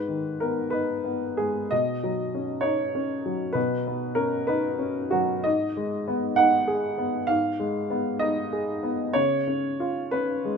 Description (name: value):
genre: neoclassical minimalist piano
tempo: 64 BPM (dotted quarters)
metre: 6/8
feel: uneven beats, rubato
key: G# dorian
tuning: A4 = 440 Hz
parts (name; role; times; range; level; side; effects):
- warm upright piano; solo; 0.0-10.6 s; G#2 to F#5; -24 LUFS; equal; none
room: moderate plate reverb, RT60 2.4 s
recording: minimal, uncompressed stereo recording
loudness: -23 LUFS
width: side -6 dB against mid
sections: 0.0-10.6 A section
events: none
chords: 0.0 G#m; 1.7 Badd9; 5.5 G#m; 9.2 C#